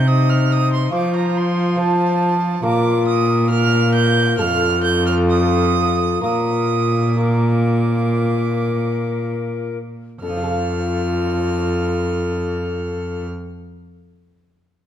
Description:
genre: classical, renaissance-style consort dance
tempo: 56-71 BPM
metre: 4/4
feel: straight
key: F mixolydian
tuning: A4 = 440 Hz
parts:
  - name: tenor recorder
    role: melody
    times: 0.0-13.3 s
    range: A4 to C5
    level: -26 LUFS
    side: left 5 dB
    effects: none
  - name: warm violin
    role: second line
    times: 0.0-13.3 s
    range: A5 to G6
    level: -23 LUFS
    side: right 6 dB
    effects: none
  - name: lute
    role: accompaniment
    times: 0.0-13.5 s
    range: F2 to F5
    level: -28 LUFS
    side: right 1 dB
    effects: none
  - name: warm trombone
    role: accompaniment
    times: 0.0-13.3 s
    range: Eb4 to F4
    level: -23 LUFS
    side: left 4 dB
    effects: none
  - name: rich cello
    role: bass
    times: 0.0-13.3 s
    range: F2 to F3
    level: -19 LUFS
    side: right 1 dB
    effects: none
room: moderate recital hall reverb, RT60 1.5 s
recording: dark, warm production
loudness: -16 LUFS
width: side -10 dB against mid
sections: 0.0-10.2 A section; 10.2-14.5 B section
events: slowing down 0.9-10.2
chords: 0.0 Cm; 0.9 F; 2.6 Bb5; 4.4 F; 6.2 Bb; 10.2 F

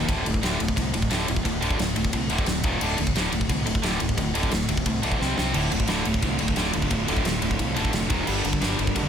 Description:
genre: heavy metal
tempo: 176 BPM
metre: 4/4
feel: straight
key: D phrygian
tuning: A4 = 439 Hz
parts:
  - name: warm studio string section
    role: sustained chords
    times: 0.0, 5.5-9.1 s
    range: D3 to Eb5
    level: -37 LUFS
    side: equal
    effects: none
  - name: fuzz guitar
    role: riff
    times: 0.0-0.1, 5.5-9.1 s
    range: D2 to G3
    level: -29 LUFS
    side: equal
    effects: distortion
  - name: tight distorted guitar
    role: riff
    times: 0.0-9.1 s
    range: D2 to C4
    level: -29 LUFS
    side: left 8 dB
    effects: distortion
  - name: tight distorted guitar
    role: riff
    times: 0.0-9.1 s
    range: D2 to C4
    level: -29 LUFS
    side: right 10 dB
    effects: distortion
  - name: fuzz fingered electric bass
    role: bass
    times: 0.0-9.1 s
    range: D1 to C2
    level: -30 LUFS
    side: equal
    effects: overdrive
  - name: big rock drum kit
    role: drums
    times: 0.1-9.0 s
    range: crash cymbal, kick drum, ride cymbal, snare drum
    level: -26 LUFS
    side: equal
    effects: soft clipping on kick
room: studio reverb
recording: dense, heavily limited modern master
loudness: -22 LUFS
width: side -8 dB against mid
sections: 0.1-9.1 A section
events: drum fill 5.2-5.5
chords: 0.1 D5; 2.6 Eb5; 2.8 D5; 5.2 C5; 5.5 Dm; 8.1 Eb5; 8.3 Gm

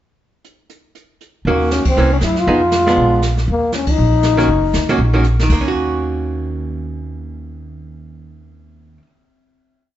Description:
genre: jazz, small-group swing and bop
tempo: 238 BPM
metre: 4/4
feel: swing 59% on 8ths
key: Eb minor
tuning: A4 = 440 Hz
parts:
  - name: jazz brush drum kit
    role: drums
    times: 0.4-5.7 s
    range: brushed snare drum, crash cymbal, hi-hat, kick drum, ride cymbal, snare drum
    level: -23 LUFS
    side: right 1 dB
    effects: none
  - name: upright bass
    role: bass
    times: 1.4-9.0 s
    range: Gb1 to Gb2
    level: -18 LUFS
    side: equal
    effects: none
  - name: growling trombone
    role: melody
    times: 1.5-5.3 s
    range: Bb3 to F4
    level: -16 LUFS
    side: left 2 dB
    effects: none
  - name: archtop guitar, miked and amplified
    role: accompaniment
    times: 1.5-9.1 s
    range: Eb3 to Ab4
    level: -20 LUFS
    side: right 3 dB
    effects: none
room: moderate studio reverb, RT60 0.8 s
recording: heard from further back in the room, nothing above 7.8 kHz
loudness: -13 LUFS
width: side -12 dB against mid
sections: 0.4-1.5 pickup bar; 1.5-5.5 A section; 5.5-7.5 final chord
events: band accent 1.8, 3.9; drum fill 5.2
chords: 0.4 N.C.; 1.5 Ebm7; 2.0 C7b9; 2.5 Fm7b5; 3.0 Bb7b9; 3.5 Ebm7

